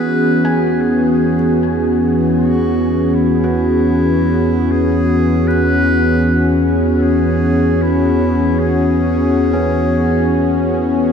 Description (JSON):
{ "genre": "ambient", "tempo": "free time", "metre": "none", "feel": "none", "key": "E major", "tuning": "A4 = 440 Hz", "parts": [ { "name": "clear clarinet", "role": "melody", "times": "0.0-11.1 s", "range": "E4 to B4", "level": "-24 LUFS", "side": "equal", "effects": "ping-pong delay" }, { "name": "warm analog pad", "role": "sustained chords", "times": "0.0-11.1 s", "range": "E3 to G#4", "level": "-13 LUFS", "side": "equal", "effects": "chorus" }, { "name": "felt-muted upright piano", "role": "arpeggios", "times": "0.0-11.1 s", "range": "C#4 to G#5", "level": "-28 LUFS", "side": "left 1 dB", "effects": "ping-pong delay" }, { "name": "warm sub bass", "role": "bass", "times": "0.0-11.1 s", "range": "E2", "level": "-21 LUFS", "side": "equal", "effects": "none" } ], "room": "wet concert hall reverb, RT60 2.2 s", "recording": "none", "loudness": "-12 LUFS", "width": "side -7 dB against mid", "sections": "0.0-11.1 A section", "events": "fade-in on felt piano 0.0-11.1; fade-in on sub bass 0.0-11.1; fade-in on clarinet 0.0-11.1", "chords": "0.0 E6", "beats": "free time" }